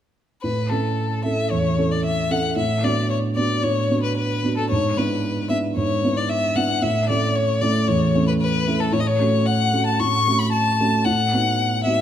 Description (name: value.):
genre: quick classical-period movement for piano quartet.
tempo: 113 BPM.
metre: 4/4.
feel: rubato.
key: A major.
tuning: A4 = 441 Hz.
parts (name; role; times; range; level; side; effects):
clear violin; melody; 0.4-12.0 s; A4 to C#6; -22 LUFS; left 4 dB; none.
dark concert grand piano; accompaniment; 0.4-12.0 s; E2 to A4; -20 LUFS; right 2 dB; none.
room: wet recital hall reverb, RT60 1.7 s.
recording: none.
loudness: -18 LUFS.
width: side -10 dB against mid.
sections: 0.4-12.0 A section.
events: none.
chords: 0.4 A; 2.6 Bm7/A; 4.7 E7/G#; 6.8 A; 8.9 F#m/A; 11.1 B7/A.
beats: | 0.43 0.97 1.51 2.04 | 2.57 3.10 3.64 4.17 | 4.71 5.24 5.76 6.29 | 6.82 7.35 7.87 8.40 | 8.93 9.46 9.99 10.53 | 11.05 11.58.